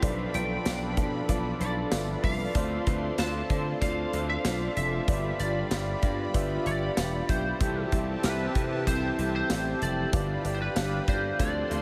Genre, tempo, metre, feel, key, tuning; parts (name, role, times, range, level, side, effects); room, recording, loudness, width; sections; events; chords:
1980s-style pop; 95 BPM; 4/4; straight; A4 = 437 Hz
lightly driven lead guitar; melody; 0.0-11.8 s; B4 to A5; -37 LUFS; equal; analog chorus, delay
clear grand piano; accompaniment; 0.0-11.8 s; G2 to F5; -36 LUFS; equal; subtle chorus
crunchy overdriven guitar; accompaniment; 0.0-11.8 s; G2 to D4; -45 LUFS; equal
brassy analog pad; sustained chords; 0.0-11.8 s; C4 to C6; -38 LUFS; equal; chorus, tremolo
analog synth brass; stabs; 0.0-11.8 s; D3 to B5; -40 LUFS; equal; chorus, delay
slap bass; bass; 0.0-11.8 s; E1 to D3; -35 LUFS; equal
big rock drum kit; drums; 0.0-11.8 s; hi-hat, kick drum, snare drum, tambourine; -33 LUFS; equal
wet huge ambient reverb, RT60 8.8 s; dreamy mix soaked in reverb; -28 LUFS; mono
0.0-11.8 A section
0.0 Bm7b5; 2.6 Dm7; 5.1 G7; 7.6 C6; 10.1 G7